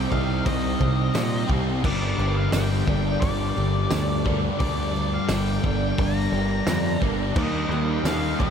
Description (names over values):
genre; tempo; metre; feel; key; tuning
rock, shoegaze and dream pop; 87 BPM; 4/4; straight; G minor; A4 = 437 Hz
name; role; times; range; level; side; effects
octave-fuzz lead guitar; melody; 0.0-8.5 s; D5 to Bb5; -31 LUFS; left 2 dB; distortion, tape echo
picked twelve-string acoustic guitar; arpeggios; 0.0-8.5 s; G3 to G4; -33 LUFS; right 3 dB; ensemble chorus, tape echo
cranked stack guitar; riff; 0.0-8.5 s; G2 to Eb4; -31 LUFS; right 1 dB; overdrive, analog chorus
raw garage guitar; riff; 0.0-8.5 s; G2 to G4; -30 LUFS; right 10 dB; overdrive, reverse reverb
thick fuzz guitar; riff; 0.0-8.5 s; G2 to Eb4; -28 LUFS; left 8 dB; distortion, wide subtle chorus
overdriven picked electric bass; bass; 0.0-8.5 s; G1 to Bb2; -26 LUFS; equal; none
loose indie drum kit; drums; 0.1-8.5 s; crash cymbal, hi-hat, kick drum, snare drum; -28 LUFS; equal; none
tambourine; percussion; 1.1-8.2 s; none; -39 LUFS; right 17 dB; none
room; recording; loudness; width
moderate huge ambient reverb, RT60 8.6 s; dreamy mix soaked in reverb; -21 LUFS; side -7 dB against mid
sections
0.0-8.5 A section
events
none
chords
0.0 Cm; 1.8 Gm; 7.4 Eb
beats
0.46 1.16 | 1.85 2.54 3.23 3.92 | 4.61 5.30 5.99 6.68 | 7.37 8.06